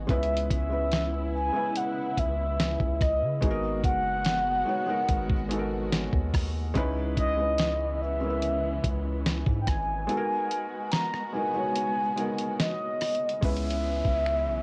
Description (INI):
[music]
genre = contemporary R&B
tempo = 72 BPM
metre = 4/4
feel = straight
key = unclear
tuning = A4 = 440 Hz
[part]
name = felt-muted upright piano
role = accompaniment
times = 0.0-14.6 s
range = G#3 to F#5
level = -35 LUFS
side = equal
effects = cassette tape
[part]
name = dark studio string section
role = sustained chords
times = 0.0-14.6 s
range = C#3 to F#4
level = -40 LUFS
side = equal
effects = cassette tape
[part]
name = long sustained 808-style bass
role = bass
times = 0.0-14.6 s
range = F#1 to C#3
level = -34 LUFS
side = equal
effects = none
[part]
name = mellow horn-like synth lead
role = melody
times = 0.1-14.6 s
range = D#5 to A#5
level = -31 LUFS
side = equal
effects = chorus, cassette tape
[part]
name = dusty soul sampler-style drum kit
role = drums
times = 0.1-14.5 s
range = finger snaps, hi-hat, kick drum, rim click, snare drum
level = -31 LUFS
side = equal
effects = cassette tape
[part]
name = downlifter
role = sound effects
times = 13.4-14.6 s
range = none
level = -45 LUFS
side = equal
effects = none
[sound]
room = light reverb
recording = home recording on cassette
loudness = -28 LUFS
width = mono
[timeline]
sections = 0.0-13.4 A section; 13.4-14.6 B section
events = kick muted 10.1-13.4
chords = 0.1 C#m7; 3.4 G#m7; 6.8 C#m9; 10.1 G#m7; 13.4 C#m7